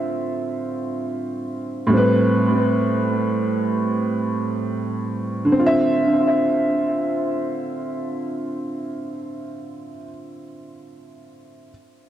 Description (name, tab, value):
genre	hip hop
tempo	free time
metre	none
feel	none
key	D dorian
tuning	A4 = 440 Hz
part	clear upright piano	accompaniment	0.0-11.7 s	A2 to E5	-20 LUFS	right 1 dB	cassette tape, analog delay
room	moderate plate reverb, RT60 3.7 s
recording	echo-heavy mix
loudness	-19 LUFS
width	side -11 dB against mid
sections	0.0-5.6 A section; 5.6-9.2 B section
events	none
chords	0.0 Dm9; 1.9 Am9; 5.6 Dm9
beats	free time